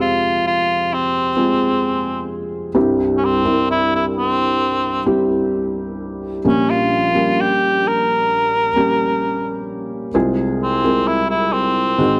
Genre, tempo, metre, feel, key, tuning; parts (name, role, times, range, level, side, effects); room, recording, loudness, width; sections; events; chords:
pop; 65 BPM; 4/4; straight; F harmonic minor; A4 = 437 Hz
warm cor anglais; melody; 0.0-12.2 s; C4 to Bb4; -20 LUFS; equal; slapback echo
felt-muted upright piano; accompaniment; 0.0-12.2 s; Bb1 to Bb4; -21 LUFS; equal
small room ambience; dry, close 1970s-style studio recording; -18 LUFS; mono
0.0-12.2 A section
0.0 Fmadd9; 2.8 C; 6.5 Gdim/Bb; 10.1 Fm/C